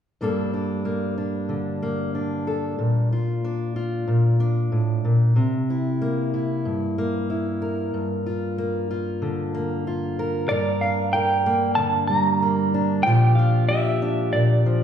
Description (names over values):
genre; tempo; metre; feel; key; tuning
acoustic folk duo or small band; 93 BPM; 4/4; straight; G dorian; A4 = 439 Hz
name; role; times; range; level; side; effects
fingerpicked steel-string acoustic guitar; accompaniment; 0.2-14.8 s; G2 to Bb4; -21 LUFS; equal; none
clean electric guitar; melody; 10.5-14.8 s; D5 to Bb5; -22 LUFS; right 2 dB; tremolo
room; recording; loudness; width
wet large studio reverb, RT60 1.4 s; heard from further back in the room; -20 LUFS; side -8 dB against mid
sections
0.2-10.5 A section; 10.5-14.8 B section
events
none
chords
0.2 Gmadd9; 2.8 Bb; 5.4 C7; 7.9 Gm7; 10.5 Gm; 13.1 Bb6